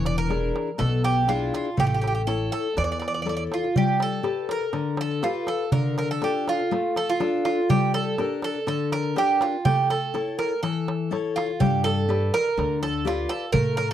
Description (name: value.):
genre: greek folk, Greek bouzouki band.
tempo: 122 BPM.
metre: 4/4.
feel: straight.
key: unclear.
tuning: A4 = 440 Hz.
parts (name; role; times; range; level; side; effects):
Greek bouzouki; melody; 0.0-13.9 s; F4 to D5; -25 LUFS; right 4 dB; slapback echo.
fingerpicked steel-string acoustic guitar; accompaniment; 0.0-13.9 s; B2 to D5; -27 LUFS; left 8 dB; none.
upright bass; bass; 0.0-3.5, 11.6-13.9 s; E1 to A2; -27 LUFS; equal; none.
darbuka; percussion; 0.1-13.9 s; none; -27 LUFS; right 3 dB; none.
room: light reverb.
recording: dry, close 1970s-style studio recording.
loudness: -22 LUFS.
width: side -11 dB against mid.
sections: 0.0-3.8 A section; 3.8-13.9 A section.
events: none.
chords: 0.0 E7; 1.8 A; 3.8 Gadd9; 5.7 Dm; 7.7 Gm; 9.7 A; 11.6 G.